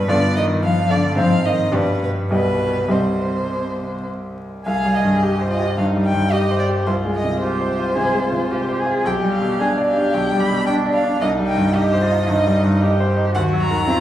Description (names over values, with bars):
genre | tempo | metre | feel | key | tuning
quick classical-period movement for piano trio | 110 BPM | 4/4 | rubato | C minor | A4 = 439 Hz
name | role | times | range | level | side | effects
warm violin | melody | 0.0-14.0 s | B4 to B5 | -24 LUFS | left 1 dB | none
warm cello | second line | 0.0-14.0 s | B2 to Ab4 | -23 LUFS | right 1 dB | none
bright concert grand piano | accompaniment | 0.0-14.0 s | B1 to Eb5 | -19 LUFS | equal | none
room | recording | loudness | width
wet concert hall reverb, RT60 2.3 s | vinyl crackle, small room ambience | -16 LUFS | side -12 dB against mid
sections
0.0-4.7 A section; 4.7-14.0 B section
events
none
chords
0.1 G7; 1.2 Ab; 1.7 G; 2.3 Cm; 6.9 Fm/C; 9.1 G7/B; 11.2 Cm; 13.4 Cdim/Eb